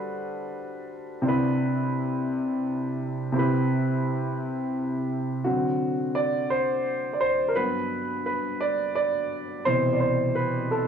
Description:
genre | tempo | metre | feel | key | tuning
R&B | 57 BPM (dotted quarters) | 6/8 | straight | unclear | A4 = 440 Hz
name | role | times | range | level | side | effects
warm baby grand piano | solo | 0.0-10.9 s | G2 to D5 | -24 LUFS | equal | none
room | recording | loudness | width
light reverb | dry, gritty hardware recording, small room reverb | -24 LUFS | side -7 dB against mid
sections
0.0-5.5 A section; 5.5-10.9 B section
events
grand piano solo 5.5-10.9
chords
0.0 Gmaj7; 1.2 Cmaj9; 3.3 Cmaj7; 5.5 D7; 7.6 Gmaj7; 9.7 Cmaj7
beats
0.19 | 1.24 2.29 | 3.35 4.40 | 5.45 6.50 | 7.56 8.61 | 9.66 10.71

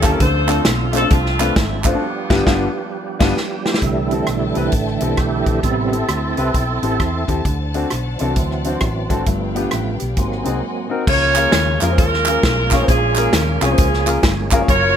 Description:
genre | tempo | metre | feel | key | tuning
uptempo gospel | 133 BPM | 4/4 | swing 64% on 8ths | C major, Db major from 11.1 s | A4 = 436 Hz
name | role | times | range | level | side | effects
clear saxophone section | melody | 0.0-3.4, 11.1-15.0 s | A3 to Db5 | -19 LUFS | right 1 dB | none
warm upright piano | accompaniment | 0.0-14.7 s | G2 to C6 | -22 LUFS | left 4 dB | none
percussive tonewheel organ | sustained chords | 0.0-15.0 s | C3 to Bb4 | -23 LUFS | right 4 dB | slow rotary speaker, overdrive, chorus vibrato
hollow-body short-scale fingered electric bass | bass | 0.0-15.0 s | Gb1 to F2 | -22 LUFS | equal | none
natural country drum kit | drums | 0.0-14.8 s | crash cymbal, hi-hat, kick drum, rim click, snare drum | -19 LUFS | equal | none
group handclap | percussion | 0.0-1.9, 11.4-14.6 s | none | -24 LUFS | right 5 dB | none
dark studio string section | sustained chords | 3.8-11.1 s | A4 to A5 | -32 LUFS | left 3 dB | none
room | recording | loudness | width
light reverb | none | -15 LUFS | side -8 dB against mid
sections
0.0-3.8 A section; 3.8-11.1 B section; 11.1-15.0 A section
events
band accent 2.0-3.8; drum fill 3.4-3.8; tonewheel organ solo 3.8-11.1; upright piano fill 6.1-7.5; break 10.6-11.1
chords
0.2 Dm7; 2.0 G7; 3.8 C6; 5.6 Am7; 7.5 D7; 9.3 G7; 10.2 Ab7; 11.1 Db6; 12.9 Bbm7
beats
| 0.20 0.66 1.11 1.56 | 2.01 2.46 2.92 3.37 | 3.82 4.28 4.73 5.18 | 5.64 6.09 6.54 7.00 | 7.45 7.91 8.36 8.81 | 9.27 9.72 10.17 10.62 | 11.08 11.53 11.98 12.43 | 12.88 13.33 13.78 14.23 | 14.68

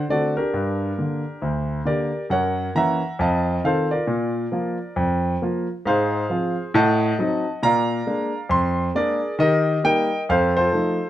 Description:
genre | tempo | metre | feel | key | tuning
jazz, stride piano | 136 BPM | 4/4 | swing 61% on 8ths | Bb major | A4 = 442 Hz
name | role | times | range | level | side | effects
warm grand piano | solo | 0.0-11.1 s | D2 to C6 | -19 LUFS | equal | none
room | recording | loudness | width
moderate club reverb, RT60 0.6 s | none | -19 LUFS | side -12 dB against mid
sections
0.0-11.1 A section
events
none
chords
0.0 D7; 0.5 Gm; 2.3 Gb7; 3.2 F7; 4.1 Bb; 5.8 Fm/Ab; 6.7 Adim7; 7.6 Bb7; 9.4 Eb; 10.3 F7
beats
0.09 | 0.53 0.98 1.42 1.86 | 2.31 2.75 3.19 3.63 | 4.08 4.52 4.96 5.41 | 5.85 6.29 6.73 7.18 | 7.62 8.06 8.51 8.95 | 9.39 9.84 10.28 10.72

